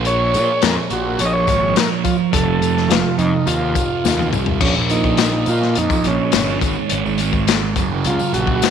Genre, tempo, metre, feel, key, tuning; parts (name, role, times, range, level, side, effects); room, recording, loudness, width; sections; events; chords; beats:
psychedelic rock; 105 BPM; 4/4; straight; Bb minor; A4 = 443 Hz
fuzz guitar; riff; 0.0-8.7 s; F2 to Bb3; -21 LUFS; right 11 dB; distortion, phaser
fuzz picked electric bass; bass; 0.0-8.6 s; F1 to Bb2; -21 LUFS; equal; overdrive
crunchy breakbeat drum kit; drums; 0.0-8.7 s; crash cymbal, hi-hat, kick drum, snare drum, toms; -20 LUFS; left 6 dB
overdriven combo organ; melody; 0.1-8.7 s; Db4 to Eb5; -21 LUFS; equal; tape echo
tambourine; percussion; 0.3-8.7 s; -34 LUFS; left 14 dB
light reverb, small room reverb; 1960s-style stereo with parts hard left and right; -15 LUFS; side -8 dB against mid
0.0-4.6 A section; 4.6-8.7 B section
drum fill 4.0-4.6; transistor combo organ solo 4.6-8.7
0.0 Bbm; 2.3 F; 4.6 Bbm; 6.6 Ab5; 7.8 Gb
| 0.05 0.62 1.19 1.76 | 2.33 2.91 3.48 4.05 | 4.62 5.19 5.76 6.33 | 6.90 7.48 8.05 8.62